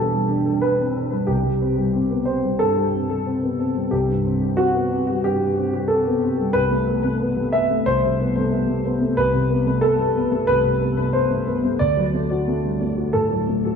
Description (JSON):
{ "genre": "neoclassical minimalist piano", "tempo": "91 BPM", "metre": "4/4", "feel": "rubato", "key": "unclear", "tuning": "A4 = 440 Hz", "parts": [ { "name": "dark concert grand piano", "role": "solo", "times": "0.0-13.8 s", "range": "C2 to E5", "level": "-18 LUFS", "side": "equal", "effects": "lush chorus, ping-pong delay" } ], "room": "wet lush hall reverb, RT60 1.7 s, small room reverb", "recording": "dreamy mix soaked in reverb", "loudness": "-18 LUFS", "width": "side -6 dB against mid", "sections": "0.0-13.8 A section", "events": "none", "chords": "0.0 Em7; 1.3 C5; 6.5 Amadd9/C; 11.8 D", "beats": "0.62 | 1.28 1.94 2.59 3.25 | 3.92 4.58 5.24 5.90 | 6.54 7.20 7.86 8.51 | 9.17 9.83 10.49 11.15 | 11.81 12.48 13.15" }